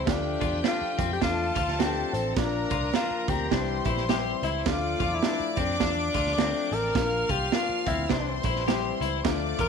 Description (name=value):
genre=uptempo 1960s-style soul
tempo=105 BPM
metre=4/4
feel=swing 59% on 8ths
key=unclear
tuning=A4 = 440 Hz
part: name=breathy tenor saxophone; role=melody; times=0.0-9.7 s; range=C4 to Bb4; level=-30 LUFS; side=left 2 dB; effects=none
part: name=clear studio violin section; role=second line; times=0.0-9.7 s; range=G4 to F6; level=-32 LUFS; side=equal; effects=none
part: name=tonewheel organ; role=sustained chords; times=0.0-9.7 s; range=E3 to D4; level=-40 LUFS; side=right 1 dB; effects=none
part: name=vintage muted picked electric bass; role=bass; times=0.0-9.7 s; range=A1 to F2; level=-33 LUFS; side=equal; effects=none
part: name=dark grand piano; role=accompaniment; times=0.1-9.6 s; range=G3 to F4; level=-34 LUFS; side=left 13 dB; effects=none
part: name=raw garage drum kit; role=drums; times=0.1-9.7 s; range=hi-hat, kick drum, snare drum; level=-29 LUFS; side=right 7 dB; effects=none
part: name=semi-hollow electric guitar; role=riff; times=0.4-9.7 s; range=C4 to G4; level=-33 LUFS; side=left 15 dB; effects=none
room=small room ambience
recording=1960s-style stereo with parts hard left and right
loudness=-24 LUFS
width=side -6 dB against mid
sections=0.0-9.7 A section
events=none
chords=0.1 Dm; 2.4 Bb; 3.5 C; 4.7 Dm; 7.0 Bb; 8.1 C